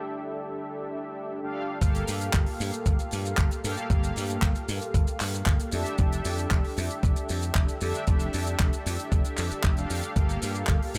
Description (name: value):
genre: nu-disco, nu disco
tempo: 115 BPM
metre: 4/4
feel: straight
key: unclear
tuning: A4 = 438 Hz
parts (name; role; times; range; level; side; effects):
- mellow synth brass; accompaniment; 0.0-11.0 s; Bb3 to F5; -35 LUFS; equal; chorus, dub echo
- dry thumbed slap bass; bass; 1.8-11.0 s; F1 to G2; -32 LUFS; equal; sidechain pumping
- electronic kick drum; drums; 1.8-10.8 s; none; -27 LUFS; equal; none
- tight funk drum kit; drums; 1.8-11.0 s; handclaps, hi-hat, shaker; -36 LUFS; equal; none
room: studio reverb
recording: none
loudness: -27 LUFS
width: mono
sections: 0.0-1.8 A section; 1.8-11.0 B section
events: break 0.0-1.8; filter sweep on analog polysynth 0.0-1.8; drop 1.8-11.0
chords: 0.0 Fmaj13; 1.8 Gm9; 5.7 Fmaj13; 10.2 Gm9